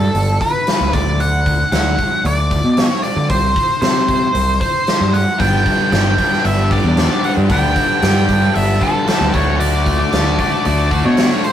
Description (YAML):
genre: classic rock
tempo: 114 BPM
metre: 4/4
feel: straight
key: unclear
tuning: A4 = 438 Hz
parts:
  - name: octave-fuzz lead guitar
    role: melody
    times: 0.0-11.5 s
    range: A4 to G5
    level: -18 LUFS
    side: equal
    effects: distortion
  - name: growling fingered electric bass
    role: bass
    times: 0.0-11.3 s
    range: G1 to D3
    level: -17 LUFS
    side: equal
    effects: overdrive
  - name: big rock drum kit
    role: drums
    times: 0.1-11.5 s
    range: hi-hat, kick drum, snare drum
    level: -20 LUFS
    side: equal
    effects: none
  - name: crunchy overdriven guitar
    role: riff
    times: 5.4-11.4 s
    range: G2 to G4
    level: -20 LUFS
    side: left 4 dB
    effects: none
  - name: tight distorted guitar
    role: riff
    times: 5.4-11.4 s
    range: G2 to G4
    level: -25 LUFS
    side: right 4 dB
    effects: distortion
room: moderate stone room reverb, RT60 1.1 s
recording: rough rehearsal-room recording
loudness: -13 LUFS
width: side -10 dB against mid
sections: 0.0-11.5 A section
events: none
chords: 0.0 Gadd9; 0.9 D; 3.3 C5; 5.4 G; 9.3 D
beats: 0.14 0.67 | 1.19 1.72 2.25 2.77 | 3.29 3.82 4.35 4.87 | 5.40 5.92 6.45 6.97 | 7.50 8.03 8.55 9.08 | 9.60 10.13 10.65 11.18